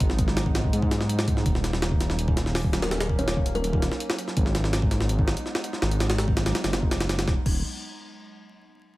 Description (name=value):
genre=drum and bass, jungle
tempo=165 BPM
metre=4/4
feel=straight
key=Eb minor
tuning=A4 = 440 Hz
part: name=warbly tape-like pad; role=sustained chords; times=0.0-7.4 s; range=Gb3 to Eb4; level=-34 LUFS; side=right 1 dB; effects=chorus, built-in reverb
part: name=dark detuned saw bass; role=bass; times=0.0-7.6 s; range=Eb1 to Ab2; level=-26 LUFS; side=equal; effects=tube saturation
part: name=jungle sampler-style drum kit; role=drums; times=0.0-7.5 s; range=crash cymbal, hi-hat, kick drum, snare drum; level=-25 LUFS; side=equal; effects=small room ambience
part: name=kalimba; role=melody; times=2.8-3.8 s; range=Bb4 to Db5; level=-33 LUFS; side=equal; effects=dub echo
room=digital ambience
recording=vinyl crackle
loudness=-22 LUFS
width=side -18 dB against mid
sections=0.0-7.3 A section; 7.3-8.7 B section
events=drop 0.0-7.3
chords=0.0 Abm7; 1.5 Ebm7; 4.4 Abm7; 7.3 Ebm7